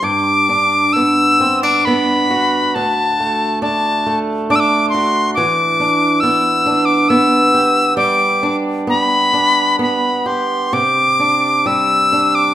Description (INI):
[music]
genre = celtic folk, Celtic slow air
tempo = 67 BPM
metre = 3/4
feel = uneven beats, rubato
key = unclear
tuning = A4 = 440 Hz
[part]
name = bright reedy wooden whistle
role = melody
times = 0.0-12.5 s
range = A5 to E6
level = -14 LUFS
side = left 1 dB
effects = none
[part]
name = fingerpicked swing-style acoustic guitar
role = accompaniment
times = 0.0-12.5 s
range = D2 to G4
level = -17 LUFS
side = right 2 dB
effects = none
[sound]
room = moderate recital hall reverb, RT60 1.5 s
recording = minimal, uncompressed stereo recording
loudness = -12 LUFS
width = side -12 dB against mid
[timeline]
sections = 0.0-12.5 A section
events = none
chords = 0.0 Gmaj7; 2.7 D; 5.4 Em7; 8.0 G; 10.7 Csus2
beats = | 0.02 0.94 1.86 | 2.74 3.62 4.49 | 5.35 6.22 7.09 | 7.97 8.88 9.79 | 10.72 11.66